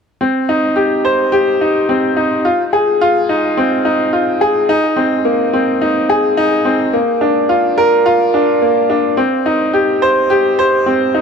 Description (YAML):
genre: electronica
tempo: 107 BPM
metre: 4/4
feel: straight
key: C minor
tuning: A4 = 440 Hz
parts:
  - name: bright upright piano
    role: solo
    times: 0.2-11.2 s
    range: Bb3 to C5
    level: -11 LUFS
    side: equal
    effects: none
room: moderate huge ambient reverb, RT60 4.4 s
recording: none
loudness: -11 LUFS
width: side -6 dB against mid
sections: 0.2-11.2 A section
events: none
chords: none